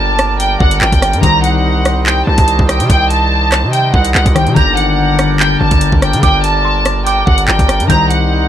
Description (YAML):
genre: hip hop, drill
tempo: 144 BPM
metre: 4/4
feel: half-time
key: G harmonic minor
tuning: A4 = 442 Hz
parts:
  - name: warm studio violin section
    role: melody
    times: 0.0-8.5 s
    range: F#5 to Bb5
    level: -14 LUFS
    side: equal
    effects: low-pass filter
  - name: concert harp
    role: accompaniment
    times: 0.0-8.5 s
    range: D3 to G4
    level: -19 LUFS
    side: left 6 dB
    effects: low-pass filter
  - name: hand-pumped harmonium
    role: sustained chords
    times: 0.0-8.5 s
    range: G3 to Eb5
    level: -22 LUFS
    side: right 2 dB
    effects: none
  - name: distorted 808-style bass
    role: bass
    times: 0.0-8.5 s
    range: G1 to D3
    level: -15 LUFS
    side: equal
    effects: distortion
  - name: drill drum kit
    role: drums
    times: 0.2-8.2 s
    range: handclaps, hi-hat, kick drum, rim click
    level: -14 LUFS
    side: equal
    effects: none
  - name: dark detuned synth bell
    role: second line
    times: 4.6-8.5 s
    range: C6 to G6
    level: -22 LUFS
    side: right 7 dB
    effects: chorus, tape echo
room: small room ambience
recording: none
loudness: -9 LUFS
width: side -10 dB against mid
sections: 0.0-8.5 A section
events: none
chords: 0.0 Gm; 1.2 Cm; 4.6 Gm; 7.9 Cm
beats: 0.40 0.81 | 1.23 1.65 2.06 2.48 | 2.90 3.31 3.73 4.15 | 4.56 4.98 5.40 5.81 | 6.23 6.65 7.06 7.48 | 7.90 8.31